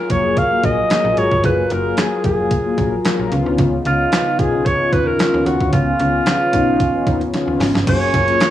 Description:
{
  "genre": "early-eighties boogie funk",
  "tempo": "112 BPM",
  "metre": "4/4",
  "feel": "straight",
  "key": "F# major",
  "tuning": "A4 = 441 Hz",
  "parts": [
    { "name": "breathy alto saxophone", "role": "melody", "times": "0.0-8.5 s", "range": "E#4 to E#5", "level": "-18 LUFS", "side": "right 1 dB", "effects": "cassette tape" },
    { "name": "chorused pulse-width pad", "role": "sustained chords", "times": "0.0-8.5 s", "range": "C#3 to A#4", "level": "-22 LUFS", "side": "equal", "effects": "cassette tape" },
    { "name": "mellow synth brass", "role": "accompaniment", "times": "0.1-8.5 s", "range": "D#3 to A#4", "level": "-21 LUFS", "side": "left 5 dB", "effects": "chorus, cassette tape" },
    { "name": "slap-like FM bass", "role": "bass", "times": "0.1-8.4 s", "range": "E#1 to D#2", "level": "-22 LUFS", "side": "right 1 dB", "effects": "none" },
    { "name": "crisp 8-bit digital drum machine", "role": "drums", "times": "0.1-8.5 s", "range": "crash cymbal, handclaps, hi-hat, kick drum, snare drum", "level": "-20 LUFS", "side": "right 1 dB", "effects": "none" }
  ],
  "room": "light reverb",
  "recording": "home recording on cassette, small room ambience",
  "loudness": "-14 LUFS",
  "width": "side -12 dB against mid",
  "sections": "0.0-7.9 A section",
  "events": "drum fill 7.3-7.9",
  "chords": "0.0 F#maj9; 3.3 C#9; 7.9 F#maj9"
}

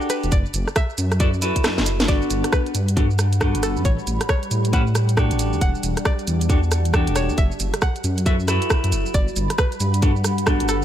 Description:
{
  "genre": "UK garage, two-step garage",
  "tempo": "136 BPM",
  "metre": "4/4",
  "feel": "swing 62% on 16ths",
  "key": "unclear",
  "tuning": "A4 = 440 Hz",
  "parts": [
    { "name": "clean electric guitar", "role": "stabs", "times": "0.0-10.8 s", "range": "B3 to B4", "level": "-26 LUFS", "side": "left 1 dB", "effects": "warbly pitch drift, digital delay" },
    { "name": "garage drum kit", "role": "drums", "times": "0.0-10.8 s", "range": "hi-hat, rim click, shaker, snare drum", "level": "-25 LUFS", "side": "right 1 dB", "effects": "none" },
    { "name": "string-like resonator pluck", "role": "melody", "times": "0.1-10.8 s", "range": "A4 to F#5", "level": "-31 LUFS", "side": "left 1 dB", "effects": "chorus, ping-pong delay" },
    { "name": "dark detuned saw bass", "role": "bass", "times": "0.2-10.8 s", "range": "E1 to A2", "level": "-21 LUFS", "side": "equal", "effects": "none" },
    { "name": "electronic kick drum", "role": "drums", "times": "0.3-10.6 s", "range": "none", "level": "-20 LUFS", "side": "equal", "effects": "none" },
    { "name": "deep dark ambient pad", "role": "texture", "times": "2.9-10.8 s", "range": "G3 to B5", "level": "-29 LUFS", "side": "right 1 dB", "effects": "chorus, built-in reverb, sidechain pumping" }
  ],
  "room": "digital ambience",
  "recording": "none",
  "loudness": "-18 LUFS",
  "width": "side -11 dB against mid",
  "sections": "0.0-2.1 A section; 2.1-10.8 A section",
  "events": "drop 0.0-2.1, 2.1-10.8; kick drops out 1.6-2.1; drum fill 1.6-2.1",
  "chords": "0.3 D69/F#; 2.1 Gmaj7; 3.9 A9; 5.4 Em11; 7.4 D69/F#; 9.1 Gmaj7"
}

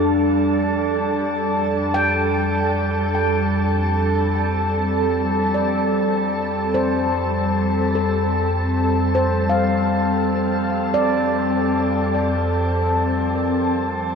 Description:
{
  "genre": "ambient",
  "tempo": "50 BPM",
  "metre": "4/4",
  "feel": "straight",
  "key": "unclear",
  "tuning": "A4 = 440 Hz",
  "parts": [
    { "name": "glassy FM pad", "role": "sustained chords", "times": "0.0-14.2 s", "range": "F2 to A5", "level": "-18 LUFS", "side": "equal", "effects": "ensemble chorus, built-in reverb" },
    { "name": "handpan", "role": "arpeggios", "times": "0.0-14.2 s", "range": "A4 to G5", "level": "-25 LUFS", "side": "equal", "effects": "ping-pong delay" }
  ],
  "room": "wet shimmer reverb, RT60 7.9 s",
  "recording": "cassette tape, nothing above 10.8 kHz",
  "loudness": "-18 LUFS",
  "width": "side -6 dB against mid",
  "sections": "0.0-12.7 A section; 12.7-14.2 B section",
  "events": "none",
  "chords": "0.0 Gsus2/F"
}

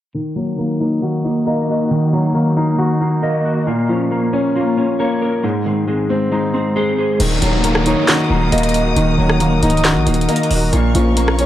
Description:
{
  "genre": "hip hop, trap",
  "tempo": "136 BPM",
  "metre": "4/4",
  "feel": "half-time",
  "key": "Eb dorian",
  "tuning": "A4 = 440 Hz",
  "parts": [
    { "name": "dark concert grand piano", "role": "accompaniment", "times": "0.1-11.5 s", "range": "Ab2 to Gb4", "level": "-18 LUFS", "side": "left 2 dB", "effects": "low-pass filter" },
    { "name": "mellow electric guitar", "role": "arpeggios", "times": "0.1-11.5 s", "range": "Eb3 to Eb5", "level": "-18 LUFS", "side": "right 1 dB", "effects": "ensemble chorus, low-pass filter, tape echo" },
    { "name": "dark chamber string section", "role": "sustained chords", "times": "7.2-11.5 s", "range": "Bb4 to Eb6", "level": "-26 LUFS", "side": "equal", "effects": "none" },
    { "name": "distorted 808-style bass", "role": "bass", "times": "7.2-11.5 s", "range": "Db1 to Bb1", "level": "-18 LUFS", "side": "equal", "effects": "distortion" },
    { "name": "trap drum kit", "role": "drums", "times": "7.2-11.5 s", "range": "crash cymbal, handclaps, hi-hat, rim click, snare drum", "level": "-20 LUFS", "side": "equal", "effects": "none" },
    { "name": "downlifter", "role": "sound effects", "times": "7.2-10.7 s", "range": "none", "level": "-26 LUFS", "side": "right 1 dB", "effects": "none" },
    { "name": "breathy flute-like synth lead", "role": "second line", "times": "7.9-11.5 s", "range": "Db5 to Eb5", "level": "-26 LUFS", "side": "right 2 dB", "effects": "chorus, tape echo" }
  ],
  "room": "little or no reverb",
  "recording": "dry, gritty hardware recording, cassette tape",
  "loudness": "-14 LUFS",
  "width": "side -12 dB against mid",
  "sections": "0.1-7.2 A section; 7.2-11.5 B section",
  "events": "filter sweep 0.1-7.2",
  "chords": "0.1 Ebm; 3.7 Bbm; 5.4 Ab; 7.2 Ebm; 10.7 Bbm"
}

